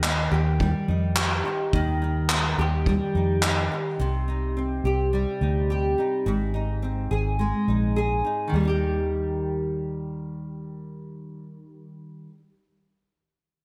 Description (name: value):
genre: acoustic pop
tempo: 106 BPM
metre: 4/4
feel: swing 55% on 16ths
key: Eb major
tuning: A4 = 440 Hz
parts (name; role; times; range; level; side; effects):
- nylon-string guitar; accompaniment; 0.0-12.4 s; Ab2 to Ab4; -29 LUFS; equal; double-tracked
- vintage muted fingered electric bass; bass; 0.0-12.3 s; Ab1 to F2; -28 LUFS; equal; none
- loose indie drum kit; drums; 0.0-3.6 s; handclaps, kick drum; -28 LUFS; equal; gated reverb
room: moderate lush hall reverb, RT60 1.8 s, small room ambience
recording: bright 1980s-style digital production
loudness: -25 LUFS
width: mono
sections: 0.0-8.5 A section; 8.5-10.8 B section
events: none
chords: 0.0 Eb; 4.0 Cm; 6.3 Ab; 8.5 Eb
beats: 0.03 0.60 1.17 | 1.73 2.30 2.86 3.43 | 4.00 4.56 5.13 5.70 | 6.26 6.83 7.39 7.96 | 8.53 9.10 9.66 10.23